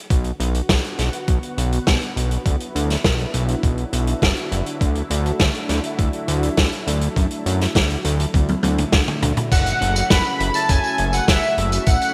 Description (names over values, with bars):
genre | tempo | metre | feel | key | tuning
synthwave | 102 BPM | 4/4 | straight | F# minor | A4 = 440 Hz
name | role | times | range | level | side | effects
analog string pad | sustained chords | 0.1-12.1 s | C#3 to F#4 | -31 LUFS | equal | ensemble chorus
fat analog bass | bass | 0.1-12.0 s | F#1 to F#2 | -24 LUFS | equal | tube saturation, sidechain pumping
electronic kick drum | drums | 0.1-12.0 s | none | -21 LUFS | equal | none
vintage drum kit | drums | 0.1-12.1 s | crash cymbal, hi-hat, snare drum, tambourine, toms | -24 LUFS | equal | none
soft supersaw | melody | 9.5-12.1 s | E5 to B5 | -22 LUFS | equal | delay
room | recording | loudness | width
moderate lush hall reverb, RT60 2.1 s | bright 1980s-style digital production | -20 LUFS | mono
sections
0.0-9.5 A section; 9.5-12.1 B section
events
drum fill 8.3-9.5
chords
0.1 Bm; 4.8 Dadd9; 9.5 F#m7